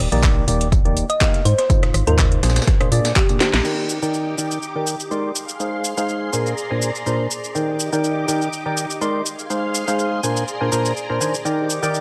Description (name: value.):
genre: piano house.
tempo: 123 BPM.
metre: 4/4.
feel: swing 54% on 16ths.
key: Eb major.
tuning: A4 = 440 Hz.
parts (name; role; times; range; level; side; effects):
percussive organ stab; riff; 0.0-12.0 s; Ab2 to C6; -24 LUFS; equal; lush chorus, sidechain pumping, analog delay.
organ-like FM bass; bass; 0.0-3.6 s; Eb1 to Bb2; -21 LUFS; equal; sidechain pumping.
garage drum kit; drums; 0.1-12.0 s; crash cymbal, handclaps, hi-hat, rim click, shaker, snare drum; -27 LUFS; equal; none.
breakbeat sampler-style drum kit; drums; 0.2-3.6 s; hi-hat, snare drum, tambourine; -30 LUFS; equal; high-pass filter on snare, sidechain pumping on hats, high-pass filter on hats, sidechain pumping on perc, high-pass filter on perc, high-pass filter on room.
electronic kick drum; drums; 0.2-3.3 s; none; -20 LUFS; equal; none.
thumb-piano-like synth pluck; melody; 1.1-3.6 s; G4 to Eb5; -26 LUFS; equal; analog chorus, cassette tape, analog delay.
string machine, violins; sustained chords; 3.6-12.0 s; Eb4 to D6; -31 LUFS; equal; ensemble chorus, sidechain pumping.
room: light reverb, digital ambience.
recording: dry, gritty hardware recording, cassette tape.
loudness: -20 LUFS.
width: mono.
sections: 0.0-3.6 A section; 3.6-12.0 B section.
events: drum fill 3.4; band accent 3.5; filter sweep on synth stab 3.6-12.0; filter sweep on string machine 3.6-12.0.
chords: 0.0 Ebmaj7; 1.5 Ab6; 2.4 Bb9; 3.6 Ebmaj7; 5.4 Ab6; 6.3 Bb9; 7.6 Ebmaj7; 9.3 Ab6; 10.2 Bb9; 11.5 Ebmaj7.